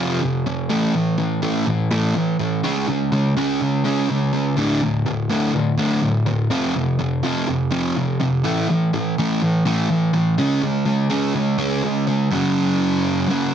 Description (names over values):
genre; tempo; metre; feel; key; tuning
rock; 124 BPM; 4/4; straight; unclear; A4 = 441 Hz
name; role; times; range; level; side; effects
fuzz guitar; solo; 0.0-13.5 s; D2 to C#4; -18 LUFS; equal; distortion
room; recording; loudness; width
moderate large studio reverb, RT60 0.8 s; heavily compressed radio sound; -18 LUFS; side -9 dB against mid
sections
0.0-12.3 A section; 12.3-13.5 B section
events
none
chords
0.0 F5; 0.7 A5; 2.6 C#5; 4.6 D5; 6.5 F5; 8.4 A5; 10.4 C#5; 12.3 F#5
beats
0.21 | 0.70 1.18 1.66 2.15 | 2.63 3.12 3.60 4.08 | 4.57 5.05 5.54 6.02 | 6.50 6.99 7.47 7.96 | 8.44 8.92 9.41 9.89 | 10.38 10.86 11.34 11.83 | 12.31 12.79 13.28